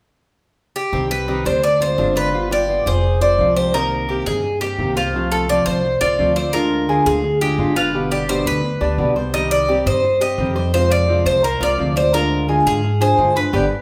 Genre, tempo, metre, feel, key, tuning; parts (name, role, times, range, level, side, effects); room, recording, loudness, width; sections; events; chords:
latin, Cuban son and guajira; 172 BPM; 4/4; straight; C harmonic minor, C minor from 3.7 s; A4 = 440 Hz
Cuban tres; melody; 0.8-13.8 s; F4 to Eb5; -21 LUFS; equal
nylon-string guitar; accompaniment; 0.9-13.6 s; B2 to G4; -25 LUFS; equal
Cuban tres; arpeggios; 0.9-13.6 s; Ab3 to F5; -26 LUFS; equal
upright bass; bass; 0.9-13.7 s; F1 to Ab2; -25 LUFS; equal
moderate large studio reverb, RT60 1.1 s; band playing live in one room; -18 LUFS; mono
0.9-3.7 A section; 3.7-13.8 B section
band accent 13.5
0.0 N.C.; 0.9 Cm; 1.6 Dm7b5; 2.3 G7; 3.0 Fm; 3.7 Cm7; 5.1 F/C; 6.5 Ddim; 7.9 G; 9.3 Cm; 10.7 Fm; 12.1 Ddim